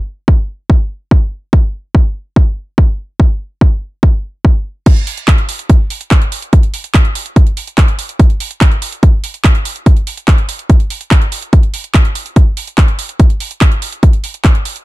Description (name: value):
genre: trance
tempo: 144 BPM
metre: 4/4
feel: straight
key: none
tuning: none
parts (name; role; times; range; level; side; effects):
- electronic kick drum; drums; 0.3-14.5 s; none; -8 LUFS; equal; none
- techno drum kit; drums; 4.9-14.8 s; crash cymbal, handclaps, hi-hat; -19 LUFS; right 2 dB; low-pass filter on hats, low-pass filter on cymbals, low-pass filter on snare, low-pass filter on room
room: little or no reverb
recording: dark, warm production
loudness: -10 LUFS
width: side -18 dB against mid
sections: 0.0-4.9 A section; 4.9-14.8 B section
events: drop 4.9-14.8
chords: none